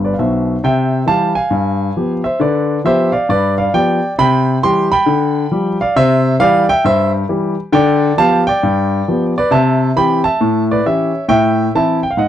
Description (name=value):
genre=jazz, stride piano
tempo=135 BPM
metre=4/4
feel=swing 63% on 8ths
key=C major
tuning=A4 = 440 Hz
part: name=warm concert grand piano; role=solo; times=0.0-12.3 s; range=G1 to C6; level=-12 LUFS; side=equal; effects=none
room=light reverb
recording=dry, close 1970s-style studio recording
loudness=-12 LUFS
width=side -11 dB against mid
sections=0.6-12.3 A section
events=none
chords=0.0 C; 1.5 G7b9; 2.4 G7/D; 4.2 C; 5.1 G7/D; 6.0 C; 7.7 G7/D; 8.6 G7; 9.5 C; 10.4 A7; 11.3 Am